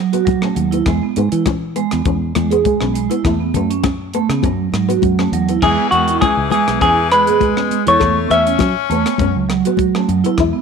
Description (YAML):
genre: highlife guitar band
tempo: 101 BPM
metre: 4/4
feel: straight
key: E major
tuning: A4 = 440 Hz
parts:
  - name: vibraphone with soft mallets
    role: arpeggios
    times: 0.0-10.6 s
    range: F#3 to G#4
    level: -18 LUFS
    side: right 10 dB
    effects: tape echo
  - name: flamenco guitar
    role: accompaniment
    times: 0.1-10.6 s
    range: B3 to A4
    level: -24 LUFS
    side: left 16 dB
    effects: none
  - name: tight funk drum kit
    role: drums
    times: 0.1-10.5 s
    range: crash cymbal, hi-hat, kick drum, rim click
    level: -24 LUFS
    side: left 2 dB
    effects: none
  - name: congas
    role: percussion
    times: 0.3-10.5 s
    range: none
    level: -22 LUFS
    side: left 17 dB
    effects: none
  - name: fingered electric bass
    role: bass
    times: 0.6-10.5 s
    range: B1 to F#3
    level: -21 LUFS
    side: left 2 dB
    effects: none
  - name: semi-hollow electric guitar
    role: melody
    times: 5.6-9.5 s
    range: F#4 to E5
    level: -14 LUFS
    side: equal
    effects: none
  - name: raspy tenor saxophone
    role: second line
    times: 5.6-9.5 s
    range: D#3 to C#4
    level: -21 LUFS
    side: left 14 dB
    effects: none
room: light reverb, small room ambience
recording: 1960s-style stereo with parts hard left and right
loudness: -13 LUFS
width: side -6 dB against mid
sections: 0.0-5.6 A section; 5.6-10.6 B section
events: none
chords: 0.0 F#m7; 0.9 E; 3.2 Aadd9/E; 4.4 F#7(no3); 5.6 E; 8.0 Aadd9/E; 9.2 F#7(no3)